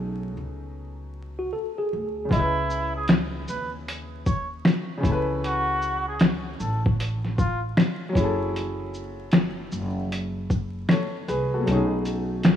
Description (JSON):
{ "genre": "lo-fi hip hop", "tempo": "77 BPM", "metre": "4/4", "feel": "swing 64% on 16ths", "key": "unclear", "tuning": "A4 = 442 Hz", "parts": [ { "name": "warm upright piano", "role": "accompaniment", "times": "0.0-12.6 s", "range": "B2 to D#5", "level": "-29 LUFS", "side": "left 1 dB", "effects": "none" }, { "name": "upright bass", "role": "bass", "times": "0.0-12.6 s", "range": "F#1 to D#2", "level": "-30 LUFS", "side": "equal", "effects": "none" }, { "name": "tine electric piano", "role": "second line", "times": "1.4-2.3 s", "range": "F#4 to A4", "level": "-30 LUFS", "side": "equal", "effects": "overdrive, fast stereo tremolo, analog delay" }, { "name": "trumpet with cup mute", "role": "melody", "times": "2.3-7.6 s", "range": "E4 to C#5", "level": "-29 LUFS", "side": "right 1 dB", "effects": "none" }, { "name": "lo-fi sampler-style drum kit", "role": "drums", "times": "2.3-12.6 s", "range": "finger snaps, hi-hat, kick drum, shaker, snare drum", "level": "-22 LUFS", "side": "left 1 dB", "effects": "overdrive" } ], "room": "light reverb, small room ambience", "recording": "rough home demo mix, vinyl crackle", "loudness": "-22 LUFS", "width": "side -10 dB against mid", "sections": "0.0-12.6 A section", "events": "none", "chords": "0.0 B13; 2.3 C#m9; 5.0 Aadd9; 8.2 F#m7; 11.7 B13" }